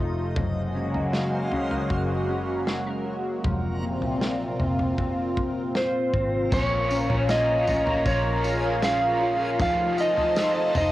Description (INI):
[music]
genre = dream pop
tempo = 78 BPM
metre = 4/4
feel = straight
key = Bb minor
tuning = A4 = 440 Hz
[part]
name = phased analog pad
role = sustained chords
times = 0.0-10.9 s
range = Bb2 to Bb5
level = -28 LUFS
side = equal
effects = phaser, chorus, cassette tape
[part]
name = mellow electric guitar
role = arpeggios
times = 0.0-10.9 s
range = F2 to Bb4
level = -31 LUFS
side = left 2 dB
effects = ensemble chorus, cassette tape, tape echo
[part]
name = vintage muted picked electric bass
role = bass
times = 0.0-10.9 s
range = F1 to Db2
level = -30 LUFS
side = equal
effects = none
[part]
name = backwards swelling texture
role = texture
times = 0.0-10.9 s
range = Gb3 to F5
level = -39 LUFS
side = right 1 dB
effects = built-in reverb, cassette tape, tape echo
[part]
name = loose indie drum kit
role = drums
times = 0.4-10.9 s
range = crash cymbal, kick drum, snare drum, tambourine, toms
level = -30 LUFS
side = equal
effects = cassette tape
[part]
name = electric slide guitar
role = melody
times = 5.8-10.9 s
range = C5 to F5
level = -24 LUFS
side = right 1 dB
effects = tape echo
[part]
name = cranked stack guitar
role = accompaniment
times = 6.5-10.9 s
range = F2 to F4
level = -31 LUFS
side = right 1 dB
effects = overdrive, harmonic tremolo, wide subtle chorus, cassette tape
[sound]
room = moderate booth ambience, RT60 0.2 s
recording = home recording on cassette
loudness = -22 LUFS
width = side -15 dB against mid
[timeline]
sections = 0.0-6.5 A section; 6.5-10.9 B section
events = none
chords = 0.4 Gbadd9; 3.4 Fsus4; 6.5 Bbm; 9.6 F7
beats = | 0.37 1.14 1.91 2.67 | 3.44 4.21 4.98 5.75 | 6.52 7.29 8.06 8.83 | 9.60 10.37